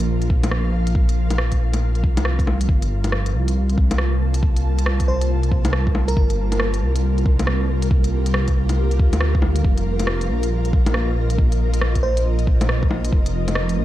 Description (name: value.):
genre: future garage.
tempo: 138 BPM.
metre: 4/4.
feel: swing 63% on 16ths.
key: G minor.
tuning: A4 = 438 Hz.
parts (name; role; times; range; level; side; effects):
ethereal airy pad; sustained chords; 0.0-13.8 s; F3 to A5; -27 LUFS; equal; ensemble chorus, built-in reverb, sidechain pumping.
dark detuned saw bass; bass; 0.0-13.8 s; F1 to D2; -20 LUFS; equal; sidechain pumping.
organic electronic drum kit; drums; 0.0-13.8 s; bongos, hi-hat, rim click; -26 LUFS; left 1 dB; vintage 12-bit sampler grit.
electronic kick drum; drums; 0.3-13.2 s; none; -19 LUFS; equal; vintage 12-bit sampler grit.
wind-like tuned noise texture; texture; 3.5-13.8 s; Bb3; -34 LUFS; right 3 dB; built-in reverb.
bell-like FM electric piano; melody; 5.1-6.7, 12.0-12.3 s; Bb4 to C5; -30 LUFS; right 1 dB; chorus, tape echo.
room: digital ambience.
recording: none.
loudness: -17 LUFS.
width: side -14 dB against mid.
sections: 0.0-13.8 A section.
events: none.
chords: 0.0 Fsus4; 2.7 Gm9; 9.6 F7sus4.